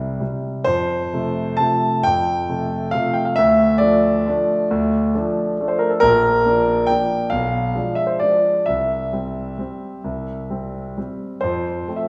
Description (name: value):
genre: classical, piano waltz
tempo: 124-144 BPM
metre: 3/4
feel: rubato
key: F major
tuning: A4 = 440 Hz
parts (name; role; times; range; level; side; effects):
- warm concert grand piano; solo; 0.0-12.1 s; Bb1 to A5; -20 LUFS; equal; none
room: wet recital hall reverb, RT60 1.4 s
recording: none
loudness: -19 LUFS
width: mono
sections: 0.7-12.1 A section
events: none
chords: 0.0 C; 0.7 F; 3.4 Dm; 6.0 Bb; 7.3 Bdim7; 8.7 C; 11.4 F